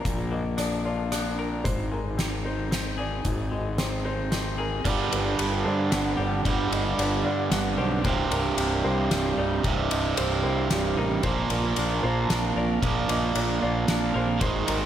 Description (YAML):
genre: post-rock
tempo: 113 BPM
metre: 3/4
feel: straight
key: unclear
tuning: A4 = 440 Hz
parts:
  - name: electric guitar through a small old amp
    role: arpeggios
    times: 0.0-14.9 s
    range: C2 to Bb4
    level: -32 LUFS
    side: left 5 dB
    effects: tape echo
  - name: felt-muted upright piano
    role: arpeggios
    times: 0.0-14.9 s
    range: Bb4 to Eb5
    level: -35 LUFS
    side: left 1 dB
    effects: tape echo
  - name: fuzz fingered electric bass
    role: bass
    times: 0.0-14.9 s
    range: C1 to G2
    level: -29 LUFS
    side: left 1 dB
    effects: overdrive
  - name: oversized low-tuned drum kit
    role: drums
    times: 0.1-14.8 s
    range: crash cymbal, hi-hat, kick drum, ride cymbal, rim click, snare drum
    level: -30 LUFS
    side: equal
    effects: none
  - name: overdriven electric guitar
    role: riff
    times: 4.8-14.9 s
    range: C2 to Bb3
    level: -26 LUFS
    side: right 6 dB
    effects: none
room: light reverb, small room ambience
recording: none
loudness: -23 LUFS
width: side -10 dB against mid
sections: 0.0-4.9 A section; 4.9-14.9 B section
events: none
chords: 0.0 Bb; 1.7 Ab; 4.9 G; 8.1 Cm7; 11.2 Bb